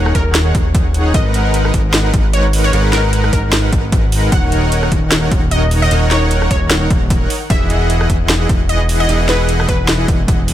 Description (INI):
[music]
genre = future bass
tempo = 151 BPM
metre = 4/4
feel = swing 56% on 16ths, half-time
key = G# minor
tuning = A4 = 440 Hz
[part]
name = wide unison pluck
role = melody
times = 0.0-10.0 s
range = A#4 to F#5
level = -22 LUFS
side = equal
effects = sidechain pumping, digital delay
[part]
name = soft supersaw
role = riff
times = 0.0-10.5 s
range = D#3 to F#5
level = -19 LUFS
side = equal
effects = sidechain pumping
[part]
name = fat analog bass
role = bass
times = 0.0-10.5 s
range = D#1 to G#1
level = -15 LUFS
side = equal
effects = sidechain pumping
[part]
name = electronic kick drum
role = drums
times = 0.1-10.4 s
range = none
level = -16 LUFS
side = equal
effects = overdrive, studio reverb
[part]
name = trap drum kit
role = drums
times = 0.1-10.5 s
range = hi-hat, rim click, snare drum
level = -19 LUFS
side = equal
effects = studio reverb
[sound]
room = little or no reverb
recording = none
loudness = -11 LUFS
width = side -12 dB against mid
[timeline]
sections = 0.0-10.5 A section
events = none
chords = 0.0 F#69/D#; 1.1 G#m9; 4.3 D#m7; 7.3 Emaj9